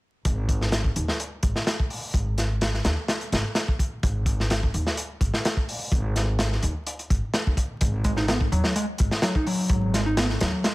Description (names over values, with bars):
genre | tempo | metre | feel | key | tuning
breakbeat, breaks | 127 BPM | 4/4 | straight | unclear | A4 = 441 Hz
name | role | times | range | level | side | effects
upright bass | bass | 0.3-10.5 s | Ab1 to Eb2 | -26 LUFS | equal | tube saturation
crunchy breakbeat drum kit | drums | 0.3-10.7 s | hi-hat, kick drum, snare drum | -24 LUFS | equal | none
overdriven picked electric bass | riff | 8.0-10.7 s | Gb3 to Eb4 | -26 LUFS | equal | ping-pong delay
room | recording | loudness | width
studio ambience | vinyl crackle | -22 LUFS | side -20 dB against mid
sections
0.3-10.7 A section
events
none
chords
none